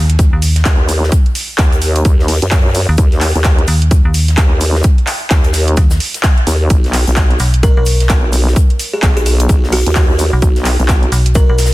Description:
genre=bass house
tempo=129 BPM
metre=4/4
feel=swing 60% on 16ths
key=Eb minor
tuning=A4 = 440 Hz
part: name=metallic FM bass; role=bass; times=0.0-11.7 s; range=B1 to Eb2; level=-12 LUFS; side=equal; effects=tube saturation, sidechain pumping
part: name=impact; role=sound effects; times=0.0-1.1 s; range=none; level=-34 LUFS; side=equal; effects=none
part: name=house drum kit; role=drums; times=0.1-11.7 s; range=handclaps, hi-hat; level=-19 LUFS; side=right 1 dB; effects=overdrive
part: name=electronic kick drum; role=drums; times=0.2-11.5 s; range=none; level=-11 LUFS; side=equal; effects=overdrive
part: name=modern studio drum kit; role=drums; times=0.2-11.7 s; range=hi-hat, shaker, snare drum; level=-27 LUFS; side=left 4 dB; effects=high-pass filter on hats, high-pass filter on snare, high-pass filter on perc, high-pass filter on room
part: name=vowel-sweep wobble bass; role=bass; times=0.7-11.1 s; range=B1 to Gb2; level=-13 LUFS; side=equal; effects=chorus, tube saturation, sidechain pumping
part: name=buzzing kalimba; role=melody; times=7.6-11.6 s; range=F#4 to Bb4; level=-20 LUFS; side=equal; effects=tape echo
room=small room ambience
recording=dense, heavily limited modern master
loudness=-10 LUFS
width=side -18 dB against mid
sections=0.0-11.7 A section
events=impact 0.0-1.1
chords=none

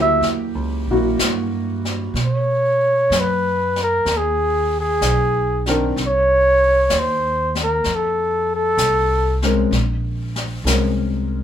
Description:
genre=jazz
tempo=64 BPM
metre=4/4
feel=swing 68% on 8ths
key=unclear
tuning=A4 = 438 Hz
part: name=breathy flugelhorn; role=melody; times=0.0-9.4 s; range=G#4 to Fb5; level=-17 LUFS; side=equal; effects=none
part: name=warm baby grand piano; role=accompaniment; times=0.0-11.4 s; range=D#3 to Bb4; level=-21 LUFS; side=left 1 dB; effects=none
part: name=upright bass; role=bass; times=0.0-11.4 s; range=Bb1 to B2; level=-23 LUFS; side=equal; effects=none
part: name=jazz brush drum kit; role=drums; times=0.2-11.4 s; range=brushed snare drum, hi-hat, snare drum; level=-26 LUFS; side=left 2 dB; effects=none
room=moderate small room reverb, RT60 0.5 s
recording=band playing live in one room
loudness=-16 LUFS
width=side -10 dB against mid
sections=0.0-11.4 A section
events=flugelhorn solo 0.0-11.4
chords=0.0 Gb7b9; 2.1 B69; 6.0 Cm; 7.8 F; 9.7 Bbm9

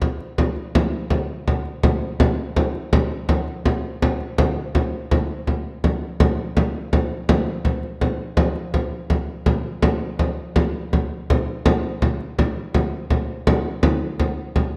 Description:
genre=medieval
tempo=110 BPM (dotted quarters)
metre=6/8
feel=straight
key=none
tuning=none
part: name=frame drum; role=percussion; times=0.0-14.7 s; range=none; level=-22 LUFS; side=equal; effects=none
room=wet recital hall reverb, RT60 1.4 s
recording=dark, warm production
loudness=-22 LUFS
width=mono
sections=0.0-4.4 A section; 4.4-13.1 B section; 13.1-14.8 B section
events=none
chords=none

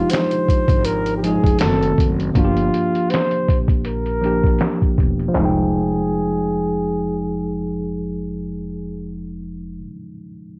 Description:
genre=lo-fi hip hop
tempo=80 BPM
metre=4/4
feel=swing 56% on 16ths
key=F dorian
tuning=A4 = 440 Hz
part: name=breathy flugelhorn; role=melody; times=0.0-9.1 s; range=F4 to C5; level=-26 LUFS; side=equal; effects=low-pass filter, cassette tape
part: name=tine electric piano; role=accompaniment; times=0.0-10.6 s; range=D#3 to G5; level=-24 LUFS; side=equal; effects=overdrive, cassette tape, low-pass filter
part: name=lo-fi sampler-style drum kit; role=drums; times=0.1-5.6 s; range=finger snaps, handclaps, hi-hat, kick drum, snare drum, toms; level=-21 LUFS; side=equal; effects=cassette tape
part: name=upright bass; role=bass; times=0.7-9.8 s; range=E1 to Bb1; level=-29 LUFS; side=equal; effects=none
room=moderate studio ambience, RT60 0.5 s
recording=home recording on cassette, low-pass filter, nothing above 10.3 kHz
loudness=-19 LUFS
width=mono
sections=0.0-5.4 A section; 5.4-8.4 B section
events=filter sweep 0.0-5.4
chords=0.0 Fm9; 1.6 F#dim7; 2.4 Gm7; 5.4 Fm9

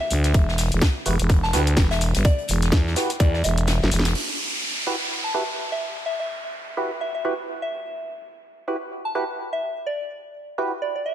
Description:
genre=bass house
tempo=126 BPM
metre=4/4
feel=swing 57% on 16ths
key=E minor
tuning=A4 = 440 Hz
part: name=soft synth bell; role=melody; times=0.0-11.1 s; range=D5 to A5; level=-29 LUFS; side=equal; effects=chorus, digital delay
part: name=growling FM bass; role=bass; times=0.1-4.1 s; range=E1 to E2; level=-21 LUFS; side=equal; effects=overdrive, sidechain pumping
part: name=garage drum kit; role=drums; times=0.1-4.3 s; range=crash cymbal, hi-hat, shaker, snare drum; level=-26 LUFS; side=equal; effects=none
part: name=street-band drum kit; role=drums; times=0.1-4.1 s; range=hi-hat, snare drum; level=-33 LUFS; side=left 2 dB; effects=high-pass filter on hats, high-pass filter on snare, high-pass filter on room
part: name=electronic kick drum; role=drums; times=0.3-3.3 s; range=none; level=-20 LUFS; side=equal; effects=none
part: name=percussive organ stab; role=stabs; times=1.1-10.7 s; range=E4 to B4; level=-29 LUFS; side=right 2 dB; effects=analog chorus, sidechain pumping, digital delay
part: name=downlifter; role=sound effects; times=4.2-8.0 s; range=none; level=-29 LUFS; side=right 1 dB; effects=none
room=light reverb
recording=none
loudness=-21 LUFS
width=side -11 dB against mid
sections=0.0-4.2 A section; 4.2-11.1 B section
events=drop 0.0-4.2; kick drops out 3.7-4.2; drum fill 3.7-4.2; band accent 4.0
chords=0.0 Emadd9

